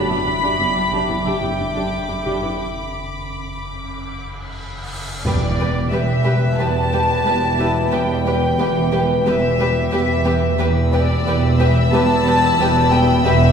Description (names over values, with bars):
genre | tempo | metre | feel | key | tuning
cinematic | 90 BPM | 4/4 | straight | E minor from 5.2 s | A4 = 440 Hz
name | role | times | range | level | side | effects
warm symphonic violin section | melody | 0.0-13.5 s | D5 to B5 | -21 LUFS | left 1 dB | none
dark symphonic viola section | accompaniment | 0.0-13.3 s | G3 to G4 | -26 LUFS | right 1 dB | none
glass harmonica | sustained chords | 0.0-13.5 s | D4 to G5 | -28 LUFS | right 1 dB | none
metallic inharmonic drone | drone | 0.0-13.5 s | F#1 to E2 | -27 LUFS | left 1 dB | chorus, built-in reverb, phaser
warm studio violin section | texture | 0.0-13.5 s | G5 to E6 | -30 LUFS | left 2 dB | none
warm symphonic cello section | bass | 0.1-13.5 s | E2 to F#2 | -24 LUFS | right 2 dB | none
warm symphonic double bass section | bass | 0.3-13.5 s | E1 to F#1 | -22 LUFS | right 1 dB | none
bright grand piano | texture | 1.3-13.5 s | E4 to A5 | -33 LUFS | left 2 dB | none
cymbal swell and impact | sound effects | 4.2-7.9 s | none | -30 LUFS | equal | none
timpani | percussion | 5.2-6.2 s | E2 | -25 LUFS | right 1 dB | none
warm symphonic violin section | second line | 5.3-13.3 s | G4 to B4 | -25 LUFS | equal | none
clear trombone section | sustained chords | 5.3-13.5 s | B2 to E3 | -26 LUFS | right 2 dB | none
warm French horn section | sustained chords | 5.3-13.5 s | B3 to B4 | -26 LUFS | left 3 dB | none
room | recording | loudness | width
wet recital hall reverb, RT60 1.4 s | recorded in a church or concert hall | -15 LUFS | side -7 dB against mid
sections
0.0-5.2 A section; 5.2-13.5 B section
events
break 2.6-5.2; cymbal swell 4.2-5.2; impact 5.2-7.9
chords
0.0 Em7/F#; 5.2 Em